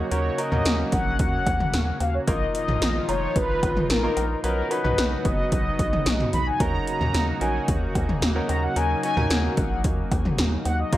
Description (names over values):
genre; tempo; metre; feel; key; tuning
synth-pop; 111 BPM; 4/4; straight; Eb minor; A4 = 440 Hz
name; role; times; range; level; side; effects
mellow synth brass; melody; 0.0-11.0 s; Bb4 to B5; -27 LUFS; left 2 dB; chorus, digital delay
bright concert grand piano; accompaniment; 0.0-11.0 s; F3 to Bb5; -30 LUFS; right 1 dB; none
chorused pulse-width pad; sustained chords; 0.0-11.0 s; Bb2 to Bb4; -30 LUFS; equal; none
round analog bass; bass; 0.0-11.0 s; F1 to Eb2; -27 LUFS; equal; none
80s electronic pad drums; drums; 0.1-11.0 s; cowbell, hi-hat, kick drum, snare drum, toms; -25 LUFS; equal; gated reverb on snare and toms, gated reverb
room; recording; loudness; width
light reverb; none; -21 LUFS; side -14 dB against mid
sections
0.0-11.0 A section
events
none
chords
0.0 Ebm7; 2.3 Bbsus4; 4.4 Badd9; 6.6 Ebm7